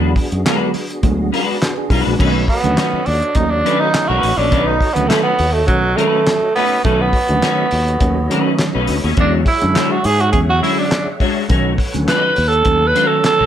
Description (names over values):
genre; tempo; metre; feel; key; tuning
funk; 103 BPM; 4/4; straight; B mixolydian; A4 = 439 Hz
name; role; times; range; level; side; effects
clean electric guitar; accompaniment; 0.0-13.5 s; G#3 to D#5; -20 LUFS; left 4 dB; ensemble chorus
tonewheel organ; sustained chords; 0.0-13.5 s; B3 to F#5; -26 LUFS; left 1 dB; slow rotary speaker, chorus vibrato
mellow tine electric piano; stabs; 0.0-13.4 s; D3 to B4; -22 LUFS; right 3 dB; medium stereo tremolo
fingered electric bass; bass; 0.0-13.5 s; A1 to G#2; -19 LUFS; equal; none
cloth-damped thuddy drum kit; drums; 0.2-13.4 s; crash cymbal, handclaps, hi-hat, kick drum, snare drum; -20 LUFS; equal; none
breathy tenor saxophone; melody; 2.5-13.5 s; F#3 to B4; -16 LUFS; right 2 dB; none
room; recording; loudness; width
light reverb; none; -13 LUFS; side -10 dB against mid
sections
0.0-2.2 A section; 2.2-13.5 B section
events
tenor saxophone solo 2.2-13.5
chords
0.0 E9; 2.2 B9; 9.2 E13; 11.5 B9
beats
0.45 1.03 1.61 | 2.20 2.78 3.36 3.94 | 4.52 5.10 5.69 6.27 | 6.85 7.43 8.01 8.59 | 9.18 9.76 10.34 10.92 | 11.50 12.08 12.66 13.24